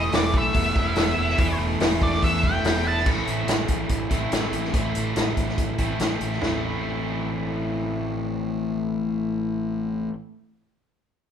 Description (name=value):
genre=indie rock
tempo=143 BPM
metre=4/4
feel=straight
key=A minor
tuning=A4 = 440 Hz
part: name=octave-fuzz lead guitar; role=melody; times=0.0-3.1 s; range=D5 to A5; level=-25 LUFS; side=equal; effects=distortion
part: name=crunchy overdriven guitar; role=riff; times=0.0-10.1 s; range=A2 to E4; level=-26 LUFS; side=left 1 dB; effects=none
part: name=fuzz fingered electric bass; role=bass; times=0.0-10.1 s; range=E1 to E2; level=-29 LUFS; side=right 1 dB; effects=overdrive
part: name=vintage drum kit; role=drums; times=0.1-6.5 s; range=crash cymbal, hi-hat, kick drum, snare drum, toms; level=-24 LUFS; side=equal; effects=none
room=light reverb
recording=band playing live in one room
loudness=-22 LUFS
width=side -8 dB against mid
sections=0.0-3.1 A section; 3.1-6.4 B section; 6.4-9.8 C section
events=lead electric guitar solo 0.0-3.1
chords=0.0 Esus4; 3.1 Am